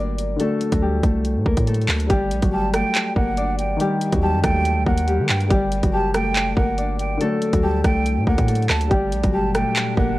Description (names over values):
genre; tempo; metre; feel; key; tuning
hip hop, drill; 141 BPM; 4/4; half-time; G harmonic minor; A4 = 440 Hz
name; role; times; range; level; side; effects
Celtic harp; melody; 0.0-10.2 s; F#3 to D5; -23 LUFS; left 2 dB; ping-pong delay
dark grand piano; accompaniment; 0.0-10.2 s; D3 to D5; -29 LUFS; left 2 dB; none
long sustained 808-style bass; bass; 0.0-10.2 s; F#1 to Eb3; -23 LUFS; equal; none
drill drum kit; drums; 0.2-10.1 s; handclaps, hi-hat, kick drum, rim click; -21 LUFS; equal; none
breathy jazz flute; second line; 2.5-10.2 s; F#5 to A5; -26 LUFS; right 3 dB; ping-pong delay
glassy FM pad; sustained chords; 9.5-10.2 s; Bb2 to G4; -29 LUFS; left 2 dB; ensemble chorus, built-in reverb
room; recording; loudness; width
studio reverb; worn, warbling old tape, cassette tape, warbly pitch drift; -18 LUFS; side -17 dB against mid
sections
0.0-2.1 A section; 2.1-10.2 B section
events
none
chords
0.4 D; 2.1 Gm; 3.8 Eb; 5.5 Gm; 7.2 D; 8.9 Gm